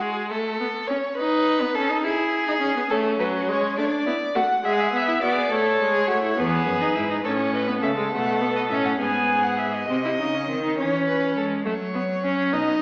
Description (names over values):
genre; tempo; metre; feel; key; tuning
classical, baroque-style fugue for string quartet; 69 BPM (dotted quarters); 6/8; straight; A major; A4 = 441 Hz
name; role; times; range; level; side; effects
rich violin; second line; 0.0-12.8 s; C#4 to Eb5; -25 LUFS; equal; none
rich viola; accompaniment; 0.0-12.8 s; F#3 to E4; -24 LUFS; equal; none
rich violin; melody; 2.9-9.9 s; A4 to G#5; -24 LUFS; equal; none
rich cello; bass; 6.4-12.8 s; E2 to G#3; -28 LUFS; equal; none
room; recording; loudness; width
wet recital hall reverb, RT60 1.3 s; heard from further back in the room, AM radio sound; -20 LUFS; side -28 dB against mid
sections
0.0-9.9 A section; 9.9-12.8 B section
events
none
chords
0.3 A; 1.2 B7/D#; 2.0 E; 2.9 A; 3.8 D/A; 4.6 E7/G#; 5.5 A; 6.4 E; 7.2 A; 8.1 B7(no3); 9.0 E/G# (rootless); 9.9 Cm; 10.8 C#m/E; 11.7 F#5